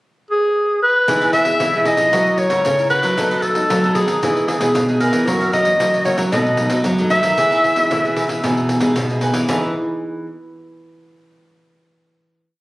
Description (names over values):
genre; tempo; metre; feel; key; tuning
samba and choro; 114 BPM; 4/4; straight; E major; A4 = 440 Hz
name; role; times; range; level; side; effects
clear clarinet; melody; 0.3-8.9 s; G#4 to E5; -16 LUFS; equal; none
cavaquinho; accompaniment; 1.1-9.7 s; D#4 to E5; -26 LUFS; right 2 dB; none
nylon-string guitar; accompaniment; 1.1-10.3 s; F#2 to A#4; -24 LUFS; left 1 dB; none
nylon-string guitar; bass; 1.1-9.7 s; B2 to F#3; -21 LUFS; equal; none
pandeiro; percussion; 1.1-9.6 s; none; -25 LUFS; left 1 dB; none
room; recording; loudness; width
light reverb; recorded on a phone in the room, studio reverb, compression; -14 LUFS; side -20 dB against mid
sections
0.0-1.1 pickup bar; 1.1-9.5 A section; 9.5-11.6 final chord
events
none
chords
0.0 N.C.; 1.1 Emaj7; 2.1 F#7; 3.2 B7/F#; 4.2 Emaj7; 5.3 F#7; 6.3 B7; 7.4 Emaj7